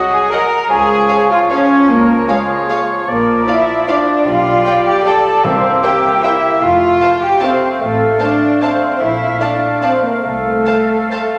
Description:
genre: classical, orchestral ballroom waltz.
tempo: 151 BPM.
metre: 3/4.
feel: uneven beats, rubato.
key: Db major, F major from 3.1 s.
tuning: A4 = 440 Hz.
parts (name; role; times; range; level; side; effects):
warm oboe; second line; 0.0-11.4 s; Db5 to F5; -21 LUFS; equal; none.
clear bassoon; accompaniment; 0.0-11.4 s; F3 to Bb3; -23 LUFS; equal; none.
mellow French horn section; sustained chords; 0.0-11.4 s; Ab3 to Bb4; -22 LUFS; equal; none.
rich symphonic cello section; bass; 0.0-11.4 s; Ab3 to Bb4; -20 LUFS; equal; none.
bright large flute ensemble; second line; 0.1-11.4 s; Ab4 to Bb5; -20 LUFS; equal; none.
warm symphonic violin section; melody; 0.3-11.2 s; F5 to A5; -30 LUFS; equal; none.
dark chamber violin section; second line; 0.3-11.2 s; Db5 to F5; -29 LUFS; equal; none.
dark symphonic viola section; accompaniment; 0.3-11.2 s; Ab4 to D5; -31 LUFS; equal; none.
warm symphonic double bass section; bass; 0.7-10.6 s; F1 to Db2; -29 LUFS; equal; none.
timpani; percussion; 5.4-6.0 s; C3; -29 LUFS; equal; none.
room: wet scoring stage reverb, RT60 1.8 s.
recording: none.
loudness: -13 LUFS.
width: mono.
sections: 0.0-11.4 A section.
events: none.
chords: 0.0 Ab7(no3); 0.7 Db; 3.1 Bb; 4.3 G7/B; 5.4 C7; 6.6 F; 7.8 F/A; 9.0 Bbmaj7; 10.2 F/C.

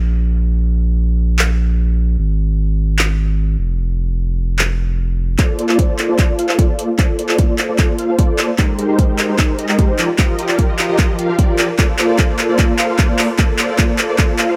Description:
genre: future bass.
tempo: 150 BPM.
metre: 4/4.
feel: half-time.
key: Bb major.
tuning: A4 = 436 Hz.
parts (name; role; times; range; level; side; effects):
saturated sub bass; bass; 0.0-5.4 s; F1 to Bb1; -18 LUFS; equal; sidechain pumping.
pop drum kit; drums; 1.4-14.5 s; handclaps, hi-hat; -21 LUFS; equal; overdrive, high-pass filter on hats, high-pass filter on snare, high-pass filter on room.
big bright polysynth; riff; 5.4-14.6 s; F3 to F5; -20 LUFS; equal; ensemble chorus, sidechain pumping.
electronic kick drum; drums; 5.4-14.3 s; none; -17 LUFS; equal; overdrive.
room: light reverb, digital ambience.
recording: none.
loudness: -16 LUFS.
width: mono.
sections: 0.0-5.4 A section; 5.4-14.6 B section.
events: build-up 5.4-14.6; drum fill 5.4-14.6; filter sweep on analog polysynth 5.4-14.6.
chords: 0.0 N.C.; 5.4 Bbmaj9; 8.6 Abmaj7; 10.0 F9sus4; 11.8 Bbmaj9.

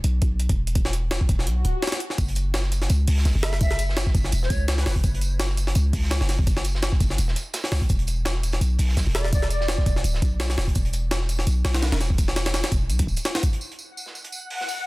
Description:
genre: drum and bass, jungle.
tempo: 168 BPM.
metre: 4/4.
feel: swing 55% on 16ths.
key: unclear.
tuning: A4 = 441 Hz.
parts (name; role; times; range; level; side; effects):
warm 808-style bass; bass; 0.0-13.2 s; D1 to C#2; -23 LUFS; equal; none.
jungle sampler-style drum kit; drums; 0.0-13.5 s; hi-hat, kick drum, snare drum; -24 LUFS; equal; overdrive, small room ambience.
swell; sound effects; 1.6-2.2 s; none; -35 LUFS; left 2 dB; none.
crunchy breakbeat drum kit; drums; 2.2-14.8 s; hi-hat, snare drum, tambourine; -35 LUFS; right 2 dB; high-pass filter on hats, small room ambience, high-pass filter on snare, high-pass filter on perc, high-pass filter on room.
mellow hollow silver concert flute; melody; 3.4-4.9, 9.1-10.0 s; B4 to E5; -32 LUFS; equal; vintage 12-bit sampler grit, dub echo.
backwards swelling texture; texture; 14.0-14.9 s; F#5 to F#6; -31 LUFS; left 3 dB; built-in reverb.
room: small room ambience.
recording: dense, heavily limited modern master.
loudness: -21 LUFS.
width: side -21 dB against mid.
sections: 0.0-13.6 A section; 13.6-14.9 B section.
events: drop 0.0-13.6; swell 1.6-2.2.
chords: 0.0 E5; 2.2 F#5; 7.9 E5; 13.6 N.C..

